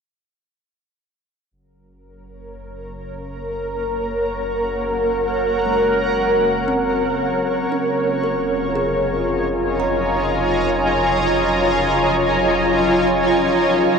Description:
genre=ambient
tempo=58 BPM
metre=3/4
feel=straight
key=Gb major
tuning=A4 = 439 Hz
part: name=granular cloud pad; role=sustained chords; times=3.1-14.0 s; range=F4 to Bb5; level=-17 LUFS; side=equal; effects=built-in reverb
part: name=warm sub bass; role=bass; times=1.5-14.0 s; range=F1 to Gb1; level=-34 LUFS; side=equal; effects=none
part: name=bowed-like drone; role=drone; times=2.4-14.0 s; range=Db3 to Gb3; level=-29 LUFS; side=right 1 dB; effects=built-in reverb
part: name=kalimba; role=arpeggios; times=5.7-12.7 s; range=Ab3 to Bb5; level=-27 LUFS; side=equal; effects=tape echo
room=wet huge ambient reverb, RT60 8.5 s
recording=worn, warbling old tape, cassette tape, warbly pitch drift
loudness=-16 LUFS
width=side -6 dB against mid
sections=1.5-14.0 A section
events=fade-in on kalimba 1.5-14.0; fade-in on sub bass 1.5-14.0; fade-in on synth drone 1.5-14.0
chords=1.5 Gb; 7.7 Db6/F

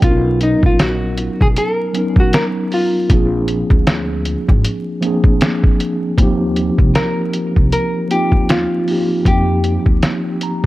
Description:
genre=lo-fi hip hop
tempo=78 BPM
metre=4/4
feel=swing 59% on 16ths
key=Eb major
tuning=A4 = 440 Hz
part: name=hollow-body jazz guitar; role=melody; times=0.0-10.7 s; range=D#4 to A#4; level=-19 LUFS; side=left 1 dB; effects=analog delay
part: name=mellow tine electric piano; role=accompaniment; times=0.0-10.7 s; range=F3 to Bb5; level=-18 LUFS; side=equal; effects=medium stereo tremolo, cassette tape
part: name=upright bass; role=bass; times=0.0-10.0 s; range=Ab1 to F2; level=-20 LUFS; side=equal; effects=none
part: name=lo-fi sampler-style drum kit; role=drums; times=0.0-10.7 s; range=hi-hat, kick drum, snare drum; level=-14 LUFS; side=equal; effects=none
room=digital ambience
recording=vinyl crackle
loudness=-13 LUFS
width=side -17 dB against mid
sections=0.0-6.2 A section; 6.2-10.7 B section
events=tine electric piano fill 10.0-10.7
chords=0.0 Bmaj9; 3.1 Bb9; 6.2 Eb69; 9.3 F9sus4

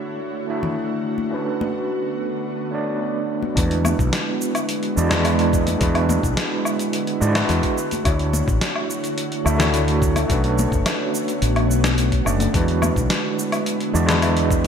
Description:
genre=sunset chillout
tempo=107 BPM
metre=4/4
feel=straight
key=unclear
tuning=A4 = 445 Hz
part: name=overdriven tine electric piano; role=accompaniment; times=0.0-14.7 s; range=G#3 to E5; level=-23 LUFS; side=right 1 dB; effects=fast tremolo, auto-pan, digital delay
part: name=ethereal airy pad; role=sustained chords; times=0.0-14.7 s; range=D3 to C#5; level=-26 LUFS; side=right 1 dB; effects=ensemble chorus, built-in reverb
part: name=congas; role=percussion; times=0.6-14.7 s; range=none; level=-30 LUFS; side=left 4 dB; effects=none
part: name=mellow fretless electric bass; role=bass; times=3.6-14.7 s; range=F#1 to G#2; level=-21 LUFS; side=left 1 dB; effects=none
part: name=dusty soul sampler-style drum kit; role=drums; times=3.6-14.7 s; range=hi-hat, shaker, snare drum, woodblock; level=-25 LUFS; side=left 1 dB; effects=gated reverb
part: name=electronic kick drum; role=drums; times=3.6-14.6 s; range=none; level=-23 LUFS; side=left 1 dB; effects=none
room=wet lush hall reverb, RT60 1.8 s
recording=bright 1980s-style digital production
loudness=-18 LUFS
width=side -7 dB against mid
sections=0.0-3.6 A section; 3.6-14.7 B section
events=none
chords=0.0 Dmaj9; 1.3 Bm9; 3.6 E9; 7.8 Dmaj9; 10.3 Bm9; 12.5 E9

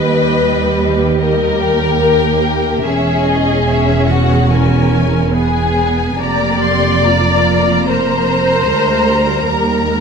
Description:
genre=classical, slow romantic movement for symphony orchestra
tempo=73 BPM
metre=4/4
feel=rubato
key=unclear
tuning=A4 = 440 Hz
part: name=warm symphonic violin section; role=melody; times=0.0-10.0 s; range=D#5 to B#5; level=-21 LUFS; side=left 3 dB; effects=none
part: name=rich symphonic violin section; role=second line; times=0.0-10.0 s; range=F#4 to D5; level=-16 LUFS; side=left 3 dB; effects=none
part: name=rich symphonic viola section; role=accompaniment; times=0.0-10.0 s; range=G3 to A#4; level=-18 LUFS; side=equal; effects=none
part: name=rich symphonic double bass section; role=bass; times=0.0-10.0 s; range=E1 to D#2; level=-18 LUFS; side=right 4 dB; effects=none
part: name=warm symphonic cello section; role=bass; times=0.0-10.0 s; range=D2 to E#2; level=-19 LUFS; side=right 2 dB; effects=none
room=light reverb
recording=close, detailed microphones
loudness=-11 LUFS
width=side -6 dB against mid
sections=0.0-10.0 A section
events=none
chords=0.0 D#; 2.9 C#m/E; 6.2 A#/E#; 9.5 D#

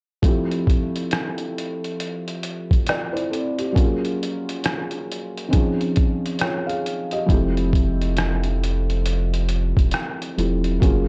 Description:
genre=lo-fi hip hop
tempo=68 BPM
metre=4/4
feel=swing 61% on 16ths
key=F major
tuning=A4 = 440 Hz
part: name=felt-muted upright piano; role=accompaniment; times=0.2-11.1 s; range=Eb3 to F5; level=-26 LUFS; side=equal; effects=cassette tape, low-pass filter
part: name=lo-fi sampler-style drum kit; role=drums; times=0.2-11.1 s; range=hi-hat, kick drum, rim click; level=-24 LUFS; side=equal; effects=vintage 12-bit sampler grit
part: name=warm sub bass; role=bass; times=7.3-11.1 s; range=E1 to Gb1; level=-25 LUFS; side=equal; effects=none
room=light reverb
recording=dark, warm production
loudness=-22 LUFS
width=mono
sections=0.2-11.1 A section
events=none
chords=0.2 Fmaj9; 3.8 Gbmaj9; 5.5 Dbmaj9; 7.3 Fmaj9

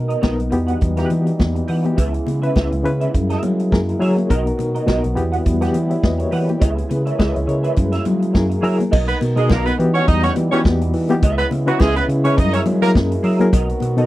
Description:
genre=disco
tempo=104 BPM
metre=4/4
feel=swing 56% on 16ths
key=B major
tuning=A4 = 440 Hz
part: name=reed electric piano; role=accompaniment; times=0.0-14.1 s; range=B2 to E5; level=-21 LUFS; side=left 2 dB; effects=fast tremolo
part: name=mellow French horn section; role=sustained chords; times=0.0-14.1 s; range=C#3 to A#4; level=-26 LUFS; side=right 1 dB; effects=none
part: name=mellow tine electric piano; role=bass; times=0.0-14.1 s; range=B1 to F#3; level=-20 LUFS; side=equal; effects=none
part: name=semi-hollow electric guitar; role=accompaniment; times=0.1-14.1 s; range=F#4 to F#5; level=-26 LUFS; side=right 5 dB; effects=wah, ensemble chorus
part: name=vintage drum kit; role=drums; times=0.1-14.1 s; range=crash cymbal, hi-hat, kick drum, snare drum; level=-17 LUFS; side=equal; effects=none
part: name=congas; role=percussion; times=0.2-14.0 s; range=none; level=-27 LUFS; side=left 6 dB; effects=none
part: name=clear horn section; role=stabs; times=9.1-12.9 s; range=F#3 to D#5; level=-19 LUFS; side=right 2 dB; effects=none
room=little or no reverb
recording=dry, close 1970s-style studio recording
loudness=-15 LUFS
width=side -16 dB against mid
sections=0.0-8.9 A section; 8.9-14.1 B section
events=none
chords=0.0 Bmaj7; 0.5 Emadd9; 2.0 C#m7; 3.1 F#9; 4.3 Bmaj7; 5.2 Emadd9; 6.6 C#m7; 7.8 F#9; 8.9 Bmaj7; 9.8 Emadd9; 11.2 C#m7; 12.4 F#9; 13.5 Bmaj7

